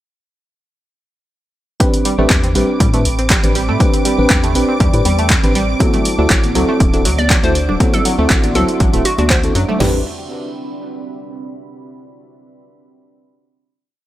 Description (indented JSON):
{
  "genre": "deep house",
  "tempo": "120 BPM",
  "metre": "4/4",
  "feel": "swing 53% on 16ths",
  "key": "A dorian",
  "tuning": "A4 = 438 Hz",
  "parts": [
    { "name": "analog pluck", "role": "arpeggios", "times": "1.8-10.0 s", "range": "F#3 to D4", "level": "-23 LUFS", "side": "right 2 dB", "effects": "chorus, phaser, sidechain pumping, tape echo" },
    { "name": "mellow FM electric piano", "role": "stabs", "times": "1.8-10.0 s", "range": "C4 to B4", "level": "-19 LUFS", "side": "equal", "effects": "chorus, sidechain pumping, analog delay" },
    { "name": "house drum kit", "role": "drums", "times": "1.8-9.9 s", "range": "crash cymbal, kick drum, snare drum, toms", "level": "-16 LUFS", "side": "equal", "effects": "overdrive" },
    { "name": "punchy analog drum machine", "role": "drums", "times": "1.8-9.7 s", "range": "handclaps, hi-hat", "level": "-19 LUFS", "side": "equal", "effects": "none" },
    { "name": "analog string pad", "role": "texture", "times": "1.8-9.8 s", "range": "D6", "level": "-28 LUFS", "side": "right 3 dB", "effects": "ensemble chorus, sidechain pumping" },
    { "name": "deep dark ambient pad", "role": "texture", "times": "3.1-11.8 s", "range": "C4 to C6", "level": "-26 LUFS", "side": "right 2 dB", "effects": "chorus, built-in reverb, sidechain pumping" },
    { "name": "organ-like FM bass", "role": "bass", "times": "2.2-10.0 s", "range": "D1 to A2", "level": "-18 LUFS", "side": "equal", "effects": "sidechain pumping" },
    { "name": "congas", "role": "percussion", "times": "5.8-9.8 s", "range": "none", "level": "-24 LUFS", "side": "left 2 dB", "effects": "none" },
    { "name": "hollow square pluck", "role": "melody", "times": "7.2-9.8 s", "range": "F#4 to D5", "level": "-21 LUFS", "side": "right 1 dB", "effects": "chorus, tape echo" }
  ],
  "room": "little or no reverb",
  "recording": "none",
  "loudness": "-12 LUFS",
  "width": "side -14 dB against mid",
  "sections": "1.8-9.8 drop; 9.8-11.8 final chord",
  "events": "drop 1.8-9.8",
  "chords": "1.8 Am11; 5.8 D9; 9.8 Am11 (rootless)"
}